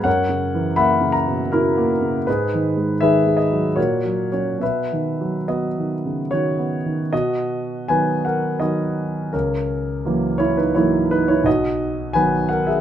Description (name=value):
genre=classical, romantic character piece for solo piano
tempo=68-88 BPM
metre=3/4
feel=rubato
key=B major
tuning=A4 = 440 Hz
part: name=warm grand piano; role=solo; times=0.0-12.8 s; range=B1 to B5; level=-18 LUFS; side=equal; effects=none
room=light reverb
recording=none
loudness=-18 LUFS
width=side -10 dB against mid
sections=0.0-7.1 A section; 7.1-12.8 A section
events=none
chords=0.1 F#7; 2.3 G#m; 3.8 F#/A#; 4.6 B; 9.3 F#7/C#; 11.5 B